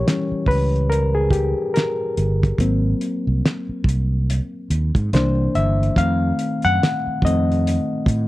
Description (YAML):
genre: R&B, neo-soul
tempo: 71 BPM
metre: 4/4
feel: swing 59% on 16ths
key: unclear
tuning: A4 = 440 Hz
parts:
  - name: overdriven reed electric piano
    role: accompaniment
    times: 0.0-8.3 s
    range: Eb3 to Gb5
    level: -21 LUFS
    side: left 2 dB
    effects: none
  - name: fretless electric bass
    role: bass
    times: 0.0-8.3 s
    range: G1 to A2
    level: -19 LUFS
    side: right 1 dB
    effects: none
  - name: cloth-damped thuddy drum kit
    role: drums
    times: 0.1-8.3 s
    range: hi-hat, kick drum, snare drum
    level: -20 LUFS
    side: right 1 dB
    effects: none
room: little or no reverb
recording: dry, close 1970s-style studio recording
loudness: -17 LUFS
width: side -17 dB against mid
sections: 0.0-8.3 A section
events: reed electric piano solo 0.0-8.3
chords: 0.0 Eb7b9 (rootless); 2.6 Ab9; 5.1 C7; 6.0 F7